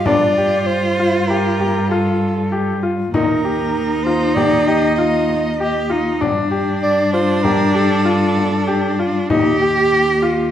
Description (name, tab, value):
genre	contemporary instrumental, chamber music in an uneven meter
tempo	98 BPM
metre	5/4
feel	straight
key	unclear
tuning	A4 = 441 Hz
part	breathy soprano saxophone	melody	0.0-9.0 s	A4 to Eb5	-20 LUFS	right 1 dB	none
part	rich cello	second line	0.0-10.5 s	D4 to G4	-19 LUFS	right 2 dB	none
part	dark cello	bass	0.0-10.5 s	Eb2 to G2	-21 LUFS	equal	none
part	clear baby grand piano	arpeggios	0.1-10.5 s	D4 to G4	-20 LUFS	left 3 dB	none
part	frame drum	percussion	0.1-9.6 s	none	-26 LUFS	left 3 dB	none
room	moderate recital hall reverb, RT60 1.6 s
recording	recorded in a church or concert hall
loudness	-14 LUFS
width	side -10 dB against mid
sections	0.0-3.1 A section; 3.1-10.5 B section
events	none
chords	0.0 G5; 3.1 Eb; 6.2 Gsus2; 9.3 Eb